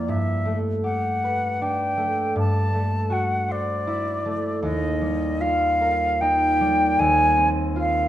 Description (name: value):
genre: classical, impressionist duo for flute and harp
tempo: 78 BPM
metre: 3/4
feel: rubato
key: unclear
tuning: A4 = 439 Hz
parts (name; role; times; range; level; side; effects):
- silver concert flute; melody; 0.0-8.1 s; D5 to A5; -22 LUFS; equal; none
- concert harp; accompaniment; 0.0-8.1 s; D#2 to C5; -24 LUFS; equal; none
room: moderate recital hall reverb, RT60 1.4 s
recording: none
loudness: -20 LUFS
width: side -12 dB against mid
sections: 0.0-8.1 A section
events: none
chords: 0.1 Gadd9; 2.4 D9/G; 4.7 D#add9; 7.0 Bbsus2/D#